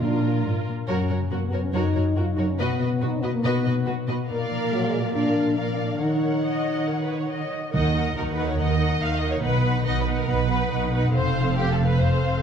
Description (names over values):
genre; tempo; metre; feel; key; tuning
cinematic, heroic adventure film score; 140 BPM; 4/4; straight; Eb minor; A4 = 440 Hz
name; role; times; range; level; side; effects
rich symphonic violin section; melody; 0.0-12.4 s; Bb4 to Gb5; -34 LUFS; left 3 dB; none
rich symphonic violin section; second line; 0.0-12.4 s; Gb4 to F5; -31 LUFS; left 1 dB; none
warm symphonic viola section; accompaniment; 0.0-12.4 s; C4 to Eb5; -31 LUFS; right 2 dB; none
mellow French horn section; sustained chords; 0.0-7.3 s; Gb3 to F4; -26 LUFS; left 2 dB; none
concert harp; arpeggios; 0.0-12.4 s; F2 to Bb4; -28 LUFS; left 6 dB; none
warm symphonic cello section; bass; 0.0-12.4 s; F2 to Eb3; -29 LUFS; right 4 dB; none
timpani; percussion; 0.0-0.6, 7.7-8.3 s; Bb2 to Eb3; -31 LUFS; right 3 dB; none
warm symphonic double bass section; bass; 7.7-12.4 s; F1 to Eb2; -25 LUFS; right 5 dB; none
room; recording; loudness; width
wet scoring stage reverb, RT60 1.5 s; dark, warm production; -21 LUFS; side -7 dB against mid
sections
0.0-7.7 A section; 7.7-12.4 A section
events
none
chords
0.0 Bb; 0.9 Gb; 2.6 B; 4.3 Bb; 6.0 Ebm7; 7.7 Ebm; 9.4 B; 11.2 F